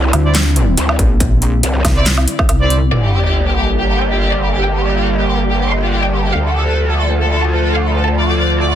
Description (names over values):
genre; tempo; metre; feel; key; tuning
heavy wobble dubstep; 140 BPM; 4/4; swing 54% on 16ths, half-time; G dorian; A4 = 439 Hz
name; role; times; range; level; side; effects
evolving wavetable pad; sustained chords; 0.0-8.8 s; D3 to G4; -20 LUFS; right 1 dB; chorus, built-in reverb, sidechain pumping
growl bass; bass; 0.0-8.8 s; G1 to D2; -16 LUFS; equal; chorus, overdrive
pulsing pluck wobble bass; bass; 0.1-2.9 s; Bb1 to D2; -14 LUFS; equal; chorus, overdrive
dubstep drum kit; drums; 0.1-2.8 s; handclaps, hi-hat, snare drum, woodblock; -18 LUFS; right 1 dB; low-pass filter on hats, small room reverb, low-pass filter on perc, low-pass filter on snare
clear brass ensemble; stabs; 0.2-2.8 s; E4 to D5; -22 LUFS; right 2 dB; ping-pong delay
electronic kick drum; drums; 1.0-2.5 s; none; -15 LUFS; equal; distortion, small room reverb
rich symphonic violin section; melody; 2.9-8.8 s; G4 to C6; -19 LUFS; equal; ping-pong delay
sub drop; sound effects; 2.9-4.6 s; none; -18 LUFS; equal; none
room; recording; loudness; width
little or no reverb; dense, heavily limited modern master; -12 LUFS; side -10 dB against mid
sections
0.0-2.9 A section; 2.9-8.8 B section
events
drop 0.0-2.9; kick drops out 2.5-2.9; impact 2.9-4.6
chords
0.0 Cadd9; 2.9 Gm; 6.3 Dm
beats
0.35 0.78 | 1.20 1.63 2.06 2.49 | 2.92 3.35 3.77 4.20 | 4.63 5.06 5.49 5.92 | 6.35 6.78 7.20 7.63 | 8.06 8.49